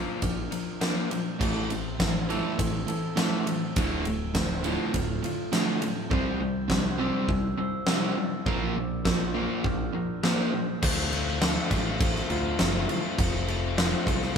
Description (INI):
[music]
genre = post-rock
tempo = 102 BPM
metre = 4/4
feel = straight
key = D minor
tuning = A4 = 440 Hz
[part]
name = electric guitar through a small old amp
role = arpeggios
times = 0.0-14.4 s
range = D2 to C5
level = -37 LUFS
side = left 2 dB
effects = spring reverb
[part]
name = glockenspiel with rubber mallets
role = arpeggios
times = 0.0-14.4 s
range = E6 to A6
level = -41 LUFS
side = right 4 dB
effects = none
[part]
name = biting overdriven guitar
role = riff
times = 0.0-14.4 s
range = D2 to F4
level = -32 LUFS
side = left 6 dB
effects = none
[part]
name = picked electric bass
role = bass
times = 0.0-14.4 s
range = D1 to D2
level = -33 LUFS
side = equal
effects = none
[part]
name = huge arena drum kit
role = drums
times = 0.2-14.3 s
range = crash cymbal, kick drum, ride cymbal, snare drum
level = -28 LUFS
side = equal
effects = none
[part]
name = overdriven semi-hollow guitar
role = riff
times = 1.4-10.8 s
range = D2 to C4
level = -31 LUFS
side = right 7 dB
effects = none
[sound]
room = light reverb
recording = band playing live in one room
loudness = -25 LUFS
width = side -7 dB against mid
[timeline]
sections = 0.0-10.8 A section; 10.8-14.4 B section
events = build-up 0.0-10.8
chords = 0.0 Bb; 1.4 Am; 3.8 Dm7; 6.1 C; 8.5 Bb; 10.8 Dm7; 13.2 F